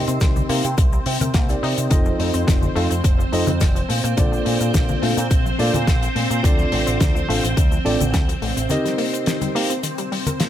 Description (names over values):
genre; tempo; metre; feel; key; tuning
nu-disco, nu disco; 106 BPM; 4/4; straight; unclear; A4 = 440 Hz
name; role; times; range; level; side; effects
tine electric piano; accompaniment; 0.0-9.7 s; Bb3 to F5; -25 LUFS; equal; sidechain pumping, ping-pong delay
string machine, full ensemble; sustained chords; 0.0-10.5 s; C4 to C5; -26 LUFS; right 1 dB; phaser, ensemble chorus, sidechain pumping
picked electric bass with an envelope filter; bass; 0.0-8.7 s; F1 to C3; -23 LUFS; equal; none
wide unison pluck; arpeggios; 0.1-10.5 s; D3 to Bb4; -30 LUFS; left 3 dB; sidechain pumping, ping-pong delay
damped 70s drum kit; drums; 0.1-10.5 s; hi-hat, snare drum; -26 LUFS; left 2 dB; small room ambience
cabasa and congas; percussion; 0.1-10.5 s; none; -28 LUFS; left 2 dB; none
electronic kick drum; drums; 0.2-8.3 s; none; -19 LUFS; equal; small room ambience
room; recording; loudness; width
small room ambience; none; -17 LUFS; side -11 dB against mid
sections
0.0-10.5 A section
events
break 8.7-10.5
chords
0.0 Cm7; 1.9 F7; 3.9 Bbmaj7; 6.4 Dm7; 8.7 Cm7